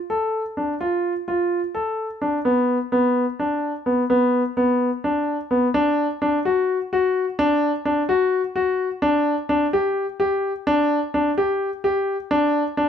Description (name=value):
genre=progressive instrumental, progressive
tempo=256 BPM (eighths)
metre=7/8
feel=straight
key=unclear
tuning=A4 = 440 Hz
part: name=clear concert grand piano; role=solo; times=0.1-12.9 s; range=B3 to A4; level=-19 LUFS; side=left 1 dB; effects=none
room=moderate studio reverb, RT60 0.8 s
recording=none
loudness=-19 LUFS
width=side -8 dB against mid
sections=0.0-5.8 A section; 5.8-12.9 B section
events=none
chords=none